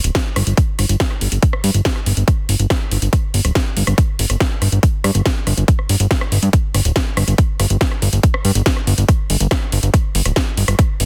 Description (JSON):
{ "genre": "psychedelic trance", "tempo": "141 BPM", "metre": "4/4", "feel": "straight", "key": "unclear", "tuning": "A4 = 442 Hz", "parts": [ { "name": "fat analog bass", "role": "bass", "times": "0.0-11.1 s", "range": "D1 to G2", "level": "-18 LUFS", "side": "equal", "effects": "none" }, { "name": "techno drum kit", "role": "drums", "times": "0.0-11.1 s", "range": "hi-hat, rim click, snare drum", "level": "-24 LUFS", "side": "equal", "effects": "soft clipping on snare" }, { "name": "electronic kick drum", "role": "drums", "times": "0.1-10.9 s", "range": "none", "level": "-19 LUFS", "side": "equal", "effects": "overdrive" } ], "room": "little or no reverb", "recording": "dense, heavily limited modern master", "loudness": "-17 LUFS", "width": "mono", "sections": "0.0-11.1 A section", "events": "none", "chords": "none" }